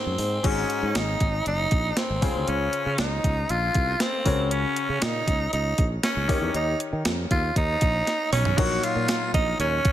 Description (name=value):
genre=1980s-style pop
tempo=118 BPM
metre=4/4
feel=straight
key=unclear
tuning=A4 = 440 Hz
part: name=raspy tenor saxophone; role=melody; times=0.0-9.9 s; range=C4 to Gb4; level=-26 LUFS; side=equal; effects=digital delay
part: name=clear concert grand piano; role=accompaniment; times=0.0-9.9 s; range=Ab2 to Db5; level=-31 LUFS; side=left 5 dB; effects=none
part: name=sustaining fretless electric bass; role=bass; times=0.1-9.8 s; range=Gb1 to Eb3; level=-28 LUFS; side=equal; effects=none
part: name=clean 12-bit digital drum machine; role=drums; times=0.2-9.9 s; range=crash cymbal, hi-hat, kick drum, snare drum, tambourine, toms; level=-25 LUFS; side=right 1 dB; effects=overdrive, gated reverb
part: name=direct-recorded clean electric guitar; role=second line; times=8.3-9.9 s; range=Db5 to Gb5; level=-32 LUFS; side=right 8 dB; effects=digital delay
room=light reverb, digital ambience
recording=none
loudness=-22 LUFS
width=side -12 dB against mid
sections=0.4-8.6 A section; 8.6-9.9 B section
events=drum fill 8.1-8.6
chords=0.4 Ab7sus4; 2.2 Dbmaj7; 4.3 Gb/Db; 6.3 Eb7; 8.6 Ebm7/Bb